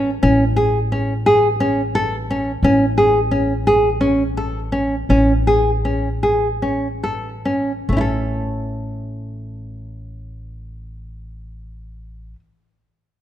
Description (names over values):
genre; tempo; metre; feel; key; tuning
contemporary instrumental, chamber music in an uneven meter; 140-175 BPM (eighths); 7/8; straight; A major; A4 = 439 Hz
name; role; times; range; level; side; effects
nylon-string guitar; arpeggios; 0.0-12.4 s; A3 to A4; -17 LUFS; equal; none
upright bass; bass; 0.0-12.3 s; A1; -23 LUFS; equal; none
room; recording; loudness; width
light reverb; none; -16 LUFS; side -11 dB against mid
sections
0.0-7.9 A section; 7.9-10.9 B section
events
slowing down 2.6-7.9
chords
0.0 Amaj7; 7.9 A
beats
| 0.24 0.58 0.92 1.26 1.61 1.95 2.29 | 2.63 2.98 3.32 3.67 4.02 4.37 4.73 | 5.10 5.47 5.85 6.23 6.63 7.04 7.46 | 7.89 8.31 8.74 9.16 9.59 10.02 10.44